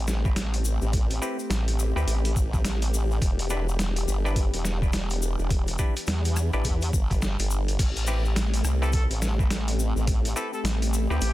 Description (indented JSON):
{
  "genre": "glitch hop",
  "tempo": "105 BPM",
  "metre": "4/4",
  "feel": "swing 61% on 16ths",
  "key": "A minor",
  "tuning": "A4 = 440 Hz",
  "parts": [
    { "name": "warbly tape-like pad", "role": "sustained chords", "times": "0.0-11.3 s", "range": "E3 to G4", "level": "-35 LUFS", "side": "left 3 dB", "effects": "chorus, built-in reverb, sidechain pumping" },
    { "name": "formant-sweep wobble bass", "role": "bass", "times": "0.0-11.3 s", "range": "E1 to E2", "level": "-25 LUFS", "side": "equal", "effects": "chorus, tube saturation" },
    { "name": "boom bap sampler-style drum kit", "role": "drums", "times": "0.1-11.3 s", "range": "crash cymbal, hi-hat, rim click, snare drum", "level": "-32 LUFS", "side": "equal", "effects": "overdrive" },
    { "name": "tube shaker", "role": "percussion", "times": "0.1-11.3 s", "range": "none", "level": "-38 LUFS", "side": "left 5 dB", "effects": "none" },
    { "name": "electronic kick drum", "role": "drums", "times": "0.3-10.2 s", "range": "none", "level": "-24 LUFS", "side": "equal", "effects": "overdrive" },
    { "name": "bright clav", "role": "stabs", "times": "1.2-11.3 s", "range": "C4 to B4", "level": "-36 LUFS", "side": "left 1 dB", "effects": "sidechain pumping, digital delay" },
    { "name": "clear trumpet", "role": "melody", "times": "8.8-11.3 s", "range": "G4 to A4", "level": "-36 LUFS", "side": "left 1 dB", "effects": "digital delay" }
  ],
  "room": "little or no reverb",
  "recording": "dense, heavily limited modern master",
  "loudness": "-23 LUFS",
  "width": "side -16 dB against mid",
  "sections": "0.0-11.3 A section",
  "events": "none",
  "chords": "0.0 Am7; 3.2 Em7; 7.8 Am7",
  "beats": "0.36 | 0.93 1.50 2.08 2.65 | 3.22 3.79 4.36 4.93 | 5.50 6.08 6.65 7.22 | 7.79 8.36 8.93 9.50 | 10.08 10.65 11.22"
}